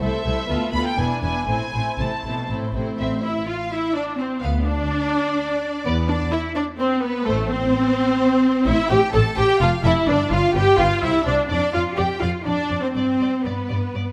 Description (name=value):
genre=quick classical-period movement for string orchestra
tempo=126 BPM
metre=3/4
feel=rubato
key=A minor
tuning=A4 = 440 Hz
part: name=rich symphonic violin section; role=melody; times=0.0-14.0 s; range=A4 to B5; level=-32 LUFS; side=equal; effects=none
part: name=warm symphonic violin section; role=second line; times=0.0-14.1 s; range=E4 to A5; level=-30 LUFS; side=equal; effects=none
part: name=rich symphonic viola section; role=accompaniment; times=0.0-14.1 s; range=A3 to A4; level=-24 LUFS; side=equal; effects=none
part: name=rich symphonic cello section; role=bass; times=0.0-14.1 s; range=C2 to A4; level=-30 LUFS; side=equal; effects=none
part: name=rich symphonic double bass section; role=bass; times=0.0-14.0 s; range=E1 to G2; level=-27 LUFS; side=equal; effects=none
room=moderate concert hall reverb, RT60 2.0 s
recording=none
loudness=-21 LUFS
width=mono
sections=0.0-3.0 A section; 3.0-14.1 B section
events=none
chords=0.0 Am; 0.5 Bm7b5/D; 1.0 E7; 1.5 Am; 4.4 N.C.; 5.9 E5; 7.3 Am; 9.6 N.C.; 10.1 G7; 11.0 C; 11.5 Dm/F; 13.0 G